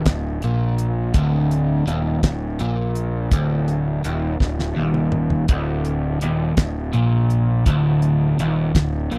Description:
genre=psychedelic rock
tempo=55 BPM (dotted quarters)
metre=6/8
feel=straight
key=unclear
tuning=A4 = 442 Hz
part: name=crunchy overdriven guitar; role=riff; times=0.0-9.2 s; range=D2 to Bb2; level=-22 LUFS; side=equal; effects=phaser
part: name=fuzz fingered electric bass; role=bass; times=0.0-9.2 s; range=D1 to Bb1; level=-27 LUFS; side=equal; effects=overdrive
part: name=damped 70s drum kit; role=drums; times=0.1-9.2 s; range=hi-hat, kick drum, snare drum, toms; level=-21 LUFS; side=equal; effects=none
room=light reverb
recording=dry, close 1970s-style studio recording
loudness=-20 LUFS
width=mono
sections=0.0-9.2 A section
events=drum fill 4.4-5.5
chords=0.0 Bbadd11/D

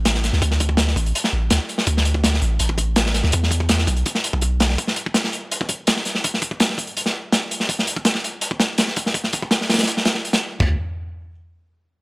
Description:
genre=drum and bass, jungle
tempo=165 BPM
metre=4/4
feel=straight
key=unclear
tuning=A4 = 441 Hz
part: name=long sustained 808-style bass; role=bass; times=0.0-4.8, 10.6-10.8 s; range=A1 to E2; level=-19 LUFS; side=equal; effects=none
part: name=crunchy breakbeat drum kit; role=drums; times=0.1-10.7 s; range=china cymbal, hi-hat, kick drum, snare drum, toms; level=-19 LUFS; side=equal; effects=high-pass filter on kick, high-pass filter on hats, high-pass filter on toms, high-pass filter on cymbals, high-pass filter on snare, high-pass filter on room
room=little or no reverb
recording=dry, gritty hardware recording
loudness=-18 LUFS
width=side -29 dB against mid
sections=0.0-10.6 A section; 10.6-12.0 B section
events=none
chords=none

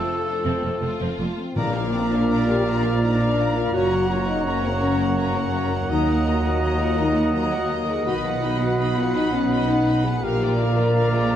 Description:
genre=cinematic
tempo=111 BPM (dotted quarters)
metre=12/8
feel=straight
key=unclear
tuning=A4 = 440 Hz
part: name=warm symphonic violin section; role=melody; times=0.0-11.4 s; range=A4 to B5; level=-33 LUFS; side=left 3 dB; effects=none
part: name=clear oboe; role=second line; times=0.0-11.4 s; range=A4 to Gb5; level=-32 LUFS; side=equal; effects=none
part: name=rich symphonic violin section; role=second line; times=0.0-11.4 s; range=C4 to Eb5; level=-37 LUFS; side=left 1 dB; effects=none
part: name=rich symphonic viola section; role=accompaniment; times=0.0-11.4 s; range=D3 to F4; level=-33 LUFS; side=right 1 dB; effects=none
part: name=mellow trombone section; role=sustained chords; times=0.0-11.4 s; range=F3 to B3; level=-32 LUFS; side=right 3 dB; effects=none
part: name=warm French horn section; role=sustained chords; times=0.0-11.4 s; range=Bb3 to Bb4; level=-25 LUFS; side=left 2 dB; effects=none
part: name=concert harp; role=arpeggios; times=0.0-11.4 s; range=Gb2 to A5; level=-32 LUFS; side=left 7 dB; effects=none
part: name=rich symphonic cello section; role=bass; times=0.4-11.4 s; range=Eb2 to B2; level=-26 LUFS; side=right 2 dB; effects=none
part: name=clear symphonic double bass section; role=bass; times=0.5-11.4 s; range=F1 to Eb2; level=-27 LUFS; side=right 2 dB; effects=none
part: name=silver concert flute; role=second line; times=1.6-11.4 s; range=Bb5 to B5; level=-34 LUFS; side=left 2 dB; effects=none
part: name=warm clarinet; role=second line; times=1.6-11.4 s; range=Db5 to Eb5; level=-34 LUFS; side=left 1 dB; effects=none
part: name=warm trumpet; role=stabs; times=1.6-11.4 s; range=Db5 to Eb5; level=-30 LUFS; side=right 2 dB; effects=none
part: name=timpani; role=percussion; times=1.6-2.1 s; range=Bb2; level=-32 LUFS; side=left 1 dB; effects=none
room=wet recital hall reverb, RT60 1.4 s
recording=none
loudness=-19 LUFS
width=side -10 dB against mid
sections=0.0-1.6 A section; 1.6-11.4 B section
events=none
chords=0.0 F; 1.6 Bb; 3.7 Gb; 5.9 Ebm; 8.1 B; 10.2 Bb

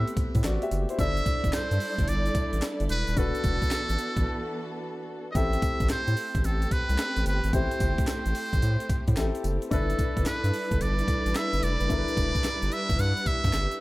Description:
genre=R&B, new jack swing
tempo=110 BPM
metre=4/4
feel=swing 66% on 16ths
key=A dorian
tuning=A4 = 440 Hz
part: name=trumpet with metal mute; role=melody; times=0.0-13.8 s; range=A4 to F#5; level=-31 LUFS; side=right 1 dB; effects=none
part: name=warm grand piano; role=accompaniment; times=0.0-13.8 s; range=B3 to E5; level=-34 LUFS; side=left 3 dB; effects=none
part: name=warm studio string section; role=sustained chords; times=0.0-13.8 s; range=E3 to D5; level=-34 LUFS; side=right 1 dB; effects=none
part: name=round analog bass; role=bass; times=0.0-13.7 s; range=D#1 to A2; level=-27 LUFS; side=equal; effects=none
part: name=breakbeat sampler-style drum kit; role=drums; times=0.1-13.8 s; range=handclaps, hi-hat, kick drum, snare drum, tambourine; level=-28 LUFS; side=equal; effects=none
part: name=egg shaker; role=percussion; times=0.1-13.8 s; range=none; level=-49 LUFS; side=right 5 dB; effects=none
room=small room ambience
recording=none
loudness=-24 LUFS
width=side -19 dB against mid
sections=0.0-5.4 A section; 5.4-13.8 A section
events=break 4.3-5.4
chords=0.0 Am9; 1.0 Gsus2; 3.2 E7sus4; 5.4 Am7; 9.7 G69

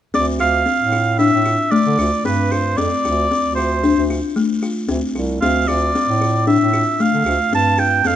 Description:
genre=contemporary instrumental, chamber music in an uneven meter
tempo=114 BPM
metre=5/4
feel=straight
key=D dorian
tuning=A4 = 441 Hz
part: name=clear oboe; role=melody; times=0.1-8.2 s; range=B4 to A5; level=-18 LUFS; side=right 2 dB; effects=none
part: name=buzzing kalimba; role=arpeggios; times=0.1-8.2 s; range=A3 to F4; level=-19 LUFS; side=left 4 dB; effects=none
part: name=mellow bass clarinet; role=bass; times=0.1-8.2 s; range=C2 to D3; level=-21 LUFS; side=right 2 dB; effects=none
room=moderate scoring stage reverb, RT60 1.9 s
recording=close, detailed microphones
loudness=-15 LUFS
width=side -11 dB against mid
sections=0.1-8.2 A section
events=none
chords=0.1 Dm7

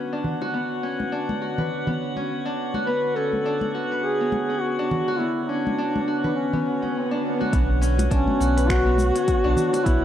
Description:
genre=organic downtempo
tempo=103 BPM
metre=4/4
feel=swing 58% on 16ths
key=B minor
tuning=A4 = 440 Hz
part: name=warbly tape-like pad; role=sustained chords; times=0.0-10.0 s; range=D3 to C#5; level=-32 LUFS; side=equal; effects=chorus, built-in reverb, sidechain pumping
part: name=Celtic harp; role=arpeggios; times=0.0-10.0 s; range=B3 to B4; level=-27 LUFS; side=left 1 dB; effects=low-pass filter, ping-pong delay
part: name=drifting glass-harmonics texture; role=texture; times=0.0-10.0 s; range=F#4 to F#5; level=-34 LUFS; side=right 1 dB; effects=chorus, built-in reverb
part: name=congas and bongos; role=percussion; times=0.2-9.8 s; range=none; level=-30 LUFS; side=left 1 dB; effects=none
part: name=warm duduk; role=melody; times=2.9-10.0 s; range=C#4 to B4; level=-24 LUFS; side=equal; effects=tape echo
part: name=swell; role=sound effects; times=6.6-7.5 s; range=none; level=-31 LUFS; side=right 1 dB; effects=none
part: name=warm sub bass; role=bass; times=7.5-10.0 s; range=B1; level=-22 LUFS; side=equal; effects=none
part: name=electronic kick drum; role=drums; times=7.5-10.0 s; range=none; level=-24 LUFS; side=equal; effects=overdrive
part: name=organic electronic drum kit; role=drums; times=7.5-10.0 s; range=cabasa, finger snaps, hi-hat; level=-34 LUFS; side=equal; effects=none
room=moderate echo chamber reverb, RT60 2.1 s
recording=worn, warbling old tape, cassette tape, warbly pitch drift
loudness=-21 LUFS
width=side -10 dB against mid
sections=0.0-7.5 A section; 7.5-10.0 B section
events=swell 6.6-7.5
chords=0.0 Bmadd9

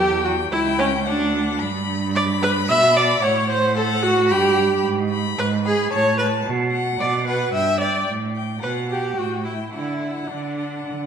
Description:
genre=quick classical-period movement for string quartet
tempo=111 BPM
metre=3/4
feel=straight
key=D major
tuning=A4 = 439 Hz
part: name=rich violin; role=melody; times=0.0-11.1 s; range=F#5 to B5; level=-27 LUFS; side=left 8 dB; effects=none
part: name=rich violin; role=second line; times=0.0-11.1 s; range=C#4 to E5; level=-28 LUFS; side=left 3 dB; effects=none
part: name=clear viola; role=accompaniment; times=0.0-11.1 s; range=C#4 to E5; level=-21 LUFS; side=right 1 dB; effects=none
part: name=rich cello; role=bass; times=0.0-11.1 s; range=C#2 to D3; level=-24 LUFS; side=right 4 dB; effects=none
room=wet recital hall reverb, RT60 1.5 s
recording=minimal, uncompressed stereo recording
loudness=-18 LUFS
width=side -7 dB against mid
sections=0.0-11.1 A section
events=none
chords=0.0 C#dim/E; 1.1 D; 1.6 G; 3.2 Am6; 4.3 G; 4.8 G#m; 5.9 A; 6.5 B5; 7.5 Em/G; 8.1 Gsus2/A; 8.6 B5; 9.2 A5; 9.7 D

